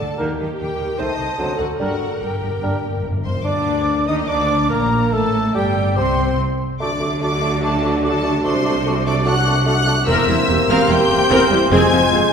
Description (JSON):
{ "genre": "classical, dramatic, fast romantic movement for symphony orchestra", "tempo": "146 BPM", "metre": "4/4", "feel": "rubato", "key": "unclear", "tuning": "A4 = 440 Hz", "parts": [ { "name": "bright symphonic violin section", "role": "melody", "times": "0.0-12.3 s", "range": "F#5 to Ab6", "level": "-25 LUFS", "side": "left 3 dB", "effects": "none" }, { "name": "mellow hollow concert flute", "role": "second line", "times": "0.0-12.3 s", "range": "A4 to Eb6", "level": "-27 LUFS", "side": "left 2 dB", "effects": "none" }, { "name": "rich symphonic violin section", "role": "second line", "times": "0.0-12.3 s", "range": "F#4 to Ab5", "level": "-26 LUFS", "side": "left 2 dB", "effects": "none" }, { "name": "warm studio viola section", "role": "accompaniment", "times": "0.0-12.2 s", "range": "F3 to C5", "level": "-23 LUFS", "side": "equal", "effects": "none" }, { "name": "rich chamber double bass section", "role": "bass", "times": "0.0-12.2 s", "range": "E1 to Eb2", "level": "-24 LUFS", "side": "right 2 dB", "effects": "none" }, { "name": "rich symphonic cello section", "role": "bass", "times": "0.0-12.2 s", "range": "E2 to Eb3", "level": "-25 LUFS", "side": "right 2 dB", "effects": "none" }, { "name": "dark clarinet", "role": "second line", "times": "0.2-12.3 s", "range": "D4 to Eb5", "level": "-27 LUFS", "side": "equal", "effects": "none" }, { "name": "mellow cor anglais", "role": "second line", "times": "0.2-12.3 s", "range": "G4 to Eb5", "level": "-27 LUFS", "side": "right 2 dB", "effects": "none" }, { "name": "warm bassoon", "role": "accompaniment", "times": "0.2-12.3 s", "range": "F#3 to Eb4", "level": "-25 LUFS", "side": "right 1 dB", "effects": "none" }, { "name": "dark French horn section", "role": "sustained chords", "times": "0.2-12.3 s", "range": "D3 to Eb4", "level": "-25 LUFS", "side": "left 2 dB", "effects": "none" }, { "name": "timpani", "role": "percussion", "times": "1.8-3.4 s", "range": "G2", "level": "-27 LUFS", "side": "left 1 dB", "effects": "none" } ], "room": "wet scoring stage reverb, RT60 1.7 s", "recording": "heard from further back in the room", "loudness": "-15 LUFS", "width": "side -6 dB against mid", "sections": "0.0-3.5 A section; 3.5-12.3 B section", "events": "timpani fill 1.8-3.5", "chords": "0.2 Eb; 1.0 Adim/C; 1.4 D7; 1.8 Gm; 3.5 Bbadd11; 5.1 C5; 6.8 D; 8.4 D7/C; 10.1 C7/E; 11.7 Fm" }